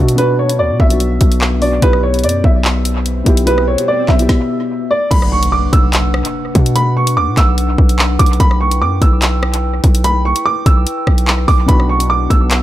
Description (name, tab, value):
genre	hip hop, drill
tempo	146 BPM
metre	4/4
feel	half-time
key	B minor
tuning	A4 = 440 Hz
part	dark baby grand piano	melody	0.0-12.6 s	B4 to E6	-17 LUFS	right 1 dB	low-pass filter, analog delay
part	felt-muted upright piano	accompaniment	0.0-4.9, 11.7-12.6 s	B2 to G4	-19 LUFS	left 2 dB	low-pass filter, analog delay
part	hard-hitting 808-style bass	bass	0.0-12.6 s	B1 to B2	-15 LUFS	equal	none
part	drill drum kit	drums	0.1-12.6 s	crash cymbal, handclaps, hi-hat, kick drum, rim click, snare drum	-14 LUFS	equal	none
part	swell and impact	sound effects	3.1-6.8 s	none	-26 LUFS	right 1 dB	none
part	glass harmonica	sustained chords	5.1-12.6 s	D4 to G5	-23 LUFS	left 2 dB	none
room	studio ambience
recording	echo-heavy mix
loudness	-11 LUFS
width	side -14 dB against mid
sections	0.0-5.1 A section; 5.1-12.6 B section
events	swell 3.1-5.1; stop 4.3-5.1; impact 5.1-6.8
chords	0.0 Bm; 1.8 Em/B; 5.1 Bm; 8.4 Em/B; 11.7 Bm